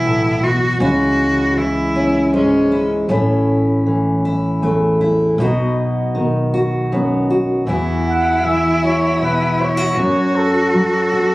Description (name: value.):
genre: acoustic folk duo or small band.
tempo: 79 BPM.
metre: 3/4.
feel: straight.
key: E major.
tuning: A4 = 440 Hz.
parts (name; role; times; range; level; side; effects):
bright cello; second line; 0.0-2.9, 7.7-11.3 s; C#4 to F#4; -18 LUFS; equal; none.
fingerpicked steel-string acoustic guitar; accompaniment; 0.0-11.3 s; E2 to F#4; -16 LUFS; equal; none.
upright bass; bass; 0.0-11.3 s; A1 to F#2; -24 LUFS; equal; none.
warm flugelhorn; melody; 8.1-11.3 s; A4 to F#5; -18 LUFS; equal; none.
room: light reverb.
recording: recorded on a phone in the room, club reverb, compression.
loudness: -14 LUFS.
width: side -19 dB against mid.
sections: 0.0-7.7 A section; 7.7-11.3 B section.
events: cello solo 0.0-7.7.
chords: 0.0 Bsus4; 0.8 C#m; 3.1 A; 5.4 B; 7.7 Esus2; 10.0 F#m.